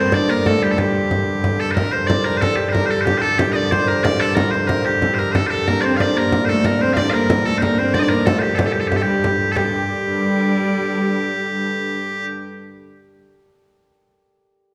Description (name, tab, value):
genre	medieval dance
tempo	185 BPM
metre	3/4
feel	straight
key	G minor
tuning	A4 = 440 Hz
part	loud bright bagpipes	melody	0.0-12.3 s	G4 to F5	-23 LUFS	equal	none
part	hammered dulcimer	second line	0.0-12.9 s	G4 to Eb5	-26 LUFS	equal	none
part	rich viola da gamba	second line	0.0-1.4, 5.7-12.3 s	G3 to Eb4	-25 LUFS	equal	none
part	dark hurdy-gurdy	drone	0.0-12.3 s	G2 to D3	-26 LUFS	equal	none
part	frame drum	percussion	0.1-9.7 s	none	-24 LUFS	equal	none
room	wet recital hall reverb, RT60 1.6 s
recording	heard from further back in the room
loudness	-18 LUFS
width	mono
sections	0.0-1.8 A section; 1.8-9.6 A section; 9.6-11.5 B section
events	none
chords	none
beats	0.13 0.45 | 0.78 1.11 1.44 | 1.76 2.09 2.42 | 2.74 3.07 3.39 | 3.72 4.05 4.37 | 4.70 5.02 5.35 | 5.67 6.00 6.32 | 6.65 6.97 7.29 | 7.62 7.94 8.27 | 8.59 8.91 9.24 | 9.56 9.88 10.20 | 10.53 10.85 11.17